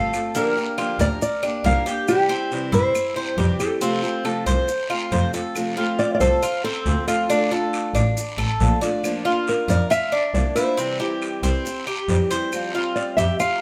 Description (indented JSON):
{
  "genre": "latin, Cuban son and guajira",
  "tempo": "138 BPM",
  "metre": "4/4",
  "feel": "straight",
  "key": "F major",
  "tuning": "A4 = 441 Hz",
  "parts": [
    { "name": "nylon-string guitar", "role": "melody", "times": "0.0-13.6 s", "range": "G4 to F5", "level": "-25 LUFS", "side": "equal", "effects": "none" },
    { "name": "fingerpicked steel-string acoustic guitar", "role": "accompaniment", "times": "0.0-13.4 s", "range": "C3 to G4", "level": "-29 LUFS", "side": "equal", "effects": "none" },
    { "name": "Cuban tres", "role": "arpeggios", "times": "0.0-13.6 s", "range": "Bb3 to D5", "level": "-28 LUFS", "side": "equal", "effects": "none" },
    { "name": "claves", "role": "percussion", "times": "0.1-13.6 s", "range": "none", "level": "-39 LUFS", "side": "equal", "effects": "none" },
    { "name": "guiro", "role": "percussion", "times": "0.1-13.6 s", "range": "none", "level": "-37 LUFS", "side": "equal", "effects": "none" },
    { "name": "maracas", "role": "percussion", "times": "0.1-13.6 s", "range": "none", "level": "-40 LUFS", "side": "equal", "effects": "none" },
    { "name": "rich double bass", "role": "bass", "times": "1.0-13.3 s", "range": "A1 to G2", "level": "-24 LUFS", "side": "equal", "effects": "none" }
  ],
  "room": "moderate studio reverb, RT60 0.9 s",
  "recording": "none",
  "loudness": "-22 LUFS",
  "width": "mono",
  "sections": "0.0-5.6 A section; 5.6-13.6 B section",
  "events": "none",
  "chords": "0.3 Gm7; 2.1 C; 3.8 F; 7.3 Dm; 9.0 Bb; 10.8 C; 12.5 Fsus2"
}